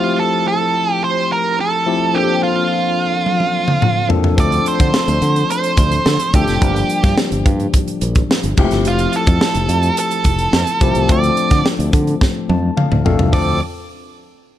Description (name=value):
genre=polished 1980s jazz-funk pop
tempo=107 BPM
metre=4/4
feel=straight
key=D minor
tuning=A4 = 441 Hz
part: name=octave-fuzz lead guitar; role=melody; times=0.0-13.6 s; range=F4 to D5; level=-18 LUFS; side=right 4 dB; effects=distortion
part: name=tine electric piano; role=accompaniment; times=0.0-13.6 s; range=F3 to A5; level=-19 LUFS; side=left 5 dB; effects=analog chorus
part: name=tight funk drum kit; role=drums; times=3.3-13.5 s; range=crash cymbal, hi-hat, kick drum, snare drum, toms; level=-16 LUFS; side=equal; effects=gated reverb
part: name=fingered electric bass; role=bass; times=4.4-13.6 s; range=F1 to D3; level=-18 LUFS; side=equal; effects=none
room=small room ambience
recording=lossy compression artefacts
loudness=-13 LUFS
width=side -12 dB against mid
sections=0.0-13.3 A section; 13.3-14.6 B section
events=drum fill 3.3-4.4, 12.2-13.3; tine electric piano fill 12.2-13.3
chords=0.0 Fmaj9; 2.1 Bbmaj9; 4.4 Dm7; 6.6 Gm7; 8.6 Fmaj9; 11.1 Dm7